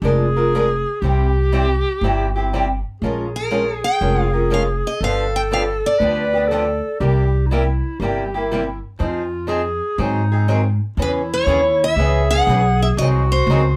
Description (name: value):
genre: acoustic string swing (jazz manouche)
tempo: 120 BPM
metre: 4/4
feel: swing 66% on 8ths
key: unclear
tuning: A4 = 440 Hz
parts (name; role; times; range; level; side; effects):
- breathy clarinet; second line; 0.0-13.8 s; Eb4 to B4; -26 LUFS; equal; none
- picked old ladder-braced acoustic guitar; accompaniment; 0.0-13.6 s; C3 to Bb4; -24 LUFS; equal; none
- upright bass; bass; 0.0-13.8 s; F1 to Ab2; -22 LUFS; equal; none
- picked steel-string acoustic guitar; melody; 3.4-6.8, 11.0-13.8 s; Bb4 to G5; -22 LUFS; equal; none
room: light reverb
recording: none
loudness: -19 LUFS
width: mono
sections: 0.0-11.0 A section; 11.0-13.8 B section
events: none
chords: 0.0 Bb7; 1.0 C; 3.0 Bbm7; 5.0 G7; 7.0 C7; 9.0 Fm7; 10.0 Ab7; 11.0 C#m7; 13.0 G#7